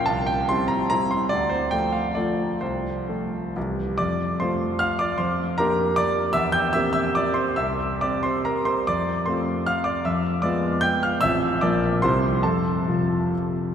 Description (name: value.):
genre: classical, romantic triple-time dance for piano with dotted rhythms.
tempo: 122-168 BPM.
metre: 3/4.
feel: rubato.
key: F major.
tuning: A4 = 440 Hz.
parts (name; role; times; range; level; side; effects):
clear concert grand piano; solo; 0.0-13.7 s; A1 to G6; -21 LUFS; equal; none.
room: wet cathedral reverb, RT60 5.2 s.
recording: heard from further back in the room.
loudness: -21 LUFS.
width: side -8 dB against mid.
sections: 0.0-4.0 A section; 4.0-13.7 B section.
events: none.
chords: 0.1 C; 1.3 Dm; 2.6 F/C; 3.6 C; 4.0 F; 5.2 Gm7/F; 6.3 C7/E; 7.6 C; 8.9 F; 10.0 Fdim7; 11.2 F/A; 11.6 Bb; 12.0 C; 12.4 F.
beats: | 0.07 0.47 0.90 | 1.30 1.71 2.16 | 2.61 3.09 3.56 | 3.99 4.40 4.82 | 5.20 5.59 5.98 | 6.34 6.73 7.14 | 7.56 8.01 8.45 | 8.86 9.27 9.67 | 10.05 10.44 10.83 | 11.21 11.59 12.00 | 12.42 12.87 13.32.